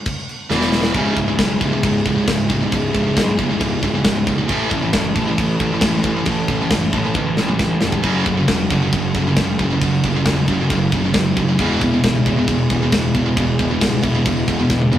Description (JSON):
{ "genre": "heavy metal", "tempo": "135 BPM", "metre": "4/4", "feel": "straight", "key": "C# minor", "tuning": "A4 = 440 Hz", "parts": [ { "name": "tight metal drum kit", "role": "drums", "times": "0.1-15.0 s", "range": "crash cymbal, kick drum, snare drum, toms", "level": "-20 LUFS", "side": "left 1 dB", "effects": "none" }, { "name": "fuzz guitar", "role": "riff", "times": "0.5-15.0 s", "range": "C#2 to A4", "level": "-22 LUFS", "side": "left 1 dB", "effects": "distortion" }, { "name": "high-gain distorted guitar", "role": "riff", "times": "0.5-15.0 s", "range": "C#2 to A3", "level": "-25 LUFS", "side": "left 4 dB", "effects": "distortion" }, { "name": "high-gain distorted guitar", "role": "riff", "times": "0.5-15.0 s", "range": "C#2 to A3", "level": "-20 LUFS", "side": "right 4 dB", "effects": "distortion" }, { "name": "fuzz picked electric bass", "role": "bass", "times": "0.5-15.0 s", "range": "C#1 to B1", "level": "-24 LUFS", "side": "equal", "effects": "overdrive" } ], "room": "moderate stone room reverb, RT60 1.2 s", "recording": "rough rehearsal-room recording, tube saturation", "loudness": "-15 LUFS", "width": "side -11 dB against mid", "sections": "1.0-15.0 A section", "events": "drum fill 0.5-1.0, 7.2-8.0, 14.7", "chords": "0.0 N.C.; 0.5 E5; 1.0 C#m; 4.5 A; 8.0 F#m; 11.6 E", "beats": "0.07 0.51 | 0.95 1.39 1.84 2.28 | 2.72 3.17 3.61 4.05 | 4.50 4.94 5.38 5.83 | 6.27 6.71 7.16 7.60 | 8.05 8.49 8.93 9.38 | 9.82 10.27 10.71 11.15 | 11.60 12.04 12.48 12.93 | 13.37 13.81 14.25 14.70" }